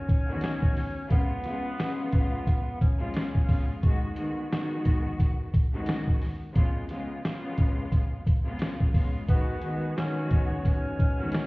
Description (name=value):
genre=hip hop, boom-bap hip-hop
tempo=88 BPM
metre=4/4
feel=swing 57% on 16ths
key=G# dorian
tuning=A4 = 440 Hz
part: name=breathy tenor saxophone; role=melody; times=0.0-3.8, 9.3-11.5 s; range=B3 to C#4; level=-35 LUFS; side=equal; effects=high-pass filter, low-pass filter, slapback echo
part: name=boom bap sampler-style drum kit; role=drums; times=0.1-11.5 s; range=hi-hat, kick drum, snare drum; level=-25 LUFS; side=equal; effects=none
part: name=clear studio string section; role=accompaniment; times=0.3-11.5 s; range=C#3 to F#4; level=-32 LUFS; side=left 1 dB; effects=cassette tape, high-pass filter, low-pass filter
part: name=tonewheel organ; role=sustained chords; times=9.3-11.5 s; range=D#3 to G#4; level=-40 LUFS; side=equal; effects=fast rotary speaker, high-pass filter, low-pass filter
room=digital ambience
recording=heard muffled through a wall, stone room reverb, vinyl crackle, EQ, lossy compression artefacts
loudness=-25 LUFS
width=side -23 dB against mid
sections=0.0-11.5 A section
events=none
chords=0.0 G#m7; 1.1 C#7; 3.8 G#m7; 6.6 C#7; 9.3 G#m7